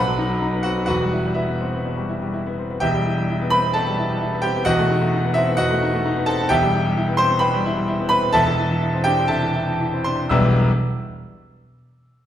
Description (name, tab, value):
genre	classical, virtuoso piano study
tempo	114-132 BPM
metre	4/4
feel	rubato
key	E minor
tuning	A4 = 440 Hz
part	clear concert grand piano	solo	0.0-10.7 s	E1 to E6	-18 LUFS	equal	none
room	wet recital hall reverb, RT60 1.4 s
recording	none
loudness	-18 LUFS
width	side -10 dB against mid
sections	0.0-2.8 A section; 2.8-10.3 B section; 10.3-12.3 C section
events	slowing down 5.6-10.3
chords	0.0 B; 0.9 Em; 4.7 B7/E; 6.5 Em; 8.3 Am/E; 10.3 Em